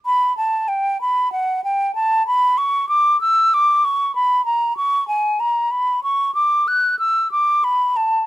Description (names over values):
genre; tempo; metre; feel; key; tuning
classical, baroque-style fantasia for unaccompanied flute; 63 BPM (dotted quarters); 12/8; rubato; B minor; A4 = 443 Hz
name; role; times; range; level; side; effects
mellow hollow silver concert flute; solo; 0.1-8.3 s; F#5 to F#6; -16 LUFS; equal; none
room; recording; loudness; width
little or no reverb; close, detailed microphones; -16 LUFS; side -15 dB against mid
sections
0.0-8.3 A section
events
none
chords
none